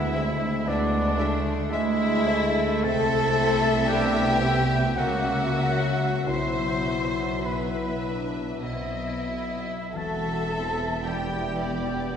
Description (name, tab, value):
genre	classical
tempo	42-60 BPM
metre	3/4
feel	rubato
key	E minor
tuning	A4 = 440 Hz
part	clear oboe	second line	0.0-12.1 s	D5 to C6	-33 LUFS	right 1 dB	none
part	mellow hollow concert flute	second line	0.0-12.2 s	D5 to C6	-33 LUFS	equal	none
part	rich studio violin section	second line	0.0-12.2 s	D4 to C5	-30 LUFS	left 3 dB	none
part	warm bassoon	accompaniment	0.0-12.2 s	F#3 to D4	-34 LUFS	right 1 dB	none
part	mellow French horn section	sustained chords	0.0-12.2 s	G#3 to E4	-32 LUFS	left 4 dB	none
part	concert harp	arpeggios	0.0-12.2 s	B2 to E5	-35 LUFS	left 5 dB	none
part	rich studio double bass section	bass	0.0-12.2 s	E1 to D2	-31 LUFS	right 3 dB	none
part	warm studio cello section	bass	0.0-12.2 s	D2 to C#3	-31 LUFS	right 2 dB	none
part	rich studio violin section	melody	0.2-12.1 s	D5 to G5	-35 LUFS	left 1 dB	none
part	dark studio viola section	accompaniment	0.2-12.1 s	G#3 to F#4	-34 LUFS	right 1 dB	none
room	wet scoring stage reverb, RT60 2.0 s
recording	heard from further back in the room, nothing above 10.4 kHz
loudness	-22 LUFS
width	side -8 dB against mid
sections	0.0-12.2 A section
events	none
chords	0.0 E7/D; 2.8 Am/C; 5.0 F#7/C#; 6.3 Bsus4; 8.6 B; 9.9 Em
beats	0.67 1.71 | 2.85 3.87 4.96 | 6.27 7.46 8.63 | 9.94 11.06 12.14